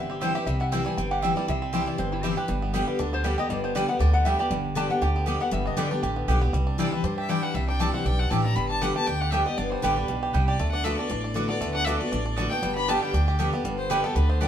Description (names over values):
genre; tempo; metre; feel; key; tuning
bluegrass; 237 BPM; 4/4; swing 54% on 8ths; G major; A4 = 440 Hz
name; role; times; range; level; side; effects
bluegrass banjo; melody; 0.0-14.5 s; G3 to G4; -31 LUFS; right 4 dB; none
lap resonator guitar; melody; 0.0-6.4 s; E4 to A5; -32 LUFS; left 3 dB; none
picked steel-string acoustic guitar; accompaniment; 0.0-14.5 s; G2 to G4; -29 LUFS; left 3 dB; none
upright bass; bass; 0.0-14.5 s; G1 to G2; -27 LUFS; equal; none
mandolin; stabs; 0.2-14.5 s; B3 to A5; -31 LUFS; right 3 dB; none
rich fiddle; second line; 6.8-14.5 s; A4 to B5; -30 LUFS; left 3 dB; none
room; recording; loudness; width
moderate studio reverb, RT60 0.8 s; band playing live in one room; -23 LUFS; side -9 dB against mid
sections
0.0-6.5 A section; 6.5-14.5 B section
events
fiddle solo 6.5-14.5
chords
0.0 C; 2.5 G; 6.5 Cadd9; 8.6 G; 10.6 D6; 12.6 G